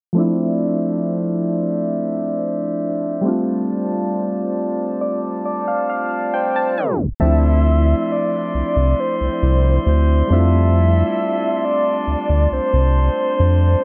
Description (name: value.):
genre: R&B.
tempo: 68 BPM.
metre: 4/4.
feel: straight.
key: D minor.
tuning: A4 = 440 Hz.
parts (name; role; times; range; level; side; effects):
soft electric-piano-like synth keys; accompaniment; 0.1-13.8 s; F3 to A5; -24 LUFS; equal; chorus.
glass harmonica; sustained chords; 0.2-13.8 s; D4 to C6; -27 LUFS; equal; none.
soft octave-layered synth lead; melody; 6.3-13.8 s; C5 to E5; -23 LUFS; equal; chorus, analog delay.
round analog bass; bass; 7.2-13.8 s; C2 to F2; -17 LUFS; equal; none.
room: wet lush hall reverb, RT60 1.8 s, digital ambience.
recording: dreamy mix soaked in reverb, low-pass filter, tape stop.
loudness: -18 LUFS.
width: mono.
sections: 0.2-7.2 A section; 7.2-13.8 B section.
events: filter sweep 0.2-7.2; synth keys fill 4.6-7.2; tape stop 6.8-7.2.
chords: 0.2 Dm9; 3.2 F6; 7.2 Dm9; 10.3 F6.